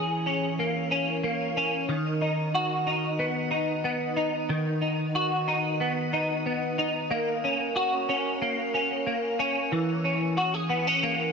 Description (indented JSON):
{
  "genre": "dream pop",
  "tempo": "92 BPM",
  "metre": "4/4",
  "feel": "straight",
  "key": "unclear",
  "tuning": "A4 = 440 Hz",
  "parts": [
    { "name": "semi-hollow electric guitar", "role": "solo", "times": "0.0-11.3 s", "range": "D#3 to G#4", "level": "-24 LUFS", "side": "equal", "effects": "ensemble chorus, tape echo" }
  ],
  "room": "moderate shimmer reverb, RT60 5.0 s",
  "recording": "dry, gritty hardware recording, nothing above 7.7 kHz",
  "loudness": "-24 LUFS",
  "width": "side -5 dB against mid",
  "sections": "0.0-11.3 A section",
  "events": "none",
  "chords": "0.0 A#m7b5/E; 1.9 B/D#; 7.1 F#; 9.7 F#9"
}